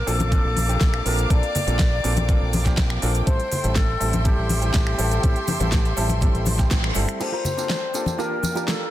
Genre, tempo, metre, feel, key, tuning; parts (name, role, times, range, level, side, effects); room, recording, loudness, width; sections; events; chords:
nu-disco, nu disco; 122 BPM; 4/4; straight; G dorian; A4 = 443 Hz
mellow hollow jazz flute; melody; 0.0-8.9 s; G4 to D5; -28 LUFS; left 1 dB; ping-pong delay
rich chamber violin section; sustained chords; 0.0-8.9 s; Bb3 to D6; -32 LUFS; left 1 dB; sidechain pumping, low-pass filter
fingered electric bass with an envelope filter; bass; 0.0-7.1 s; G1 to Bb1; -24 LUFS; equal
clear baby grand piano; accompaniment; 0.1-8.9 s; G3 to A5; -29 LUFS; equal; ping-pong delay
pop drum kit; drums; 0.1-8.8 s; crash cymbal, finger snaps, hi-hat, snare drum, tambourine; -28 LUFS; right 1 dB
cabasa and congas; percussion; 0.1-8.8 s; -28 LUFS; left 2 dB
electronic kick drum; drums; 0.3-6.8 s; -20 LUFS; equal
direct-recorded clean electric guitar; riff; 7.2-8.9 s; F4 to Bb4; -31 LUFS; right 3 dB; wide subtle chorus, low-pass filter
light reverb; dense, heavily limited modern master; -19 LUFS; side -13 dB against mid
0.0-7.2 A section; 7.2-8.9 B section
band accent 6.7; filter sweep on clean electric guitar 7.2-8.9
0.0 Bbmaj7; 3.3 Am7; 7.2 Gm7